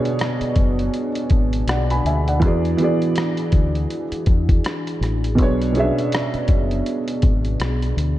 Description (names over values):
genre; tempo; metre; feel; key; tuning
lo-fi hip hop; 81 BPM; 4/4; swing 59% on 16ths; B dorian; A4 = 442 Hz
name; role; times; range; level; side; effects
dark upright piano; accompaniment; 0.0-8.2 s; B2 to B5; -22 LUFS; right 2 dB; low-pass filter
dark analog pad; sustained chords; 0.0-8.2 s; E3 to G#4; -29 LUFS; left 2 dB; chorus, low-pass filter
lo-fi sampler-style drum kit; drums; 0.1-8.2 s; hi-hat, kick drum, rim click; -20 LUFS; equal; none
deep dub fingered electric bass; bass; 0.4-8.2 s; F#1 to E2; -22 LUFS; equal; none
room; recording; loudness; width
light reverb, digital ambience; dark, warm production, nothing above 11.0 kHz; -17 LUFS; side -14 dB against mid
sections
0.0-8.2 A section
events
none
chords
0.0 Bm69; 2.4 E9; 5.4 Bm69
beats
0.20 0.94 1.68 | 2.42 3.16 3.90 4.64 | 5.38 6.12 6.86 7.60